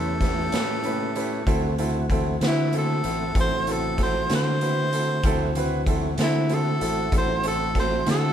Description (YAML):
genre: slow blues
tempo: 64 BPM (dotted quarters)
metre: 12/8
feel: straight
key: unclear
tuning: A4 = 440 Hz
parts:
  - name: breathy tenor saxophone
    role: melody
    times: 0.0-8.3 s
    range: E4 to C5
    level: -26 LUFS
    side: equal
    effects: none
  - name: bright grand piano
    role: accompaniment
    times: 0.0-8.3 s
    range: C4 to C5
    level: -28 LUFS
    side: right 2 dB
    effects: none
  - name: tonewheel organ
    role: sustained chords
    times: 0.0-8.3 s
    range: A3 to G4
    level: -32 LUFS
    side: right 1 dB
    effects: slow rotary speaker, chorus vibrato
  - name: fingered electric bass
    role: bass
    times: 0.0-8.3 s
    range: A1 to D3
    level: -27 LUFS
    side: left 1 dB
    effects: none
  - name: raw garage drum kit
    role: drums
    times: 0.2-8.2 s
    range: hi-hat, kick drum, snare drum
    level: -27 LUFS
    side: equal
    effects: none
room: moderate studio reverb, RT60 0.8 s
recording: band playing live in one room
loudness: -21 LUFS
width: side -9 dB against mid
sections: 0.0-8.3 A section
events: tenor saxophone solo 0.0-8.3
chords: 0.0 A9; 1.5 D9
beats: 0.53 | 1.47 2.42 3.36 4.30 | 5.25 6.19 7.13 8.07